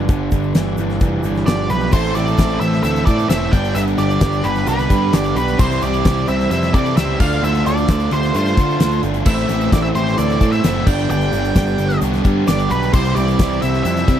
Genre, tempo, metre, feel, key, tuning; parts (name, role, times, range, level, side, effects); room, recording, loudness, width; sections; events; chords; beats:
classic rock; 131 BPM; 4/4; straight; A4 = 439 Hz
bright tonewheel organ; sustained chords; 0.0-14.2 s; B3 to D5; -33 LUFS; left 1 dB
crunchy overdriven guitar; riff; 0.0-14.2 s; G2 to A4; -23 LUFS; right 12 dB
distorted electric guitar; riff; 0.0-14.2 s; G2 to A4; -26 LUFS; left 13 dB; distortion
growling picked electric bass; bass; 0.0-14.2 s; F1 to D3; -20 LUFS; equal; overdrive
huge arena drum kit; drums; 0.1-14.2 s; crash cymbal, hi-hat, kick drum, snare drum; -19 LUFS; left 1 dB
egg shaker; percussion; 0.1-14.2 s; -42 LUFS; left 14 dB
octave-fuzz lead guitar; melody; 1.5-14.2 s; B4 to G5; -22 LUFS; right 1 dB; distortion, tape echo
smooth overdriven lead guitar; second line; 1.5-14.2 s; F4 to D5; -28 LUFS; right 6 dB
cranked stack guitar; riff; 1.9-14.2 s; G2 to D4; -24 LUFS; left 1 dB; overdrive
little or no reverb; dry, close 1970s-style studio recording; -14 LUFS; side -10 dB against mid
0.0-1.9 A section; 1.9-14.2 B section
0.0 G; 1.9 Am; 3.5 G; 5.6 C; 7.2 Dm; 9.3 Am; 10.9 G; 12.9 C
| 0.08 0.55 1.00 1.47 | 1.93 2.38 2.84 3.30 | 3.76 4.22 4.68 5.14 | 5.60 6.05 6.51 6.97 | 7.43 7.89 8.35 8.81 | 9.27 9.72 10.18 10.64 | 11.10 11.56 12.02 12.47 | 12.93 13.39 13.85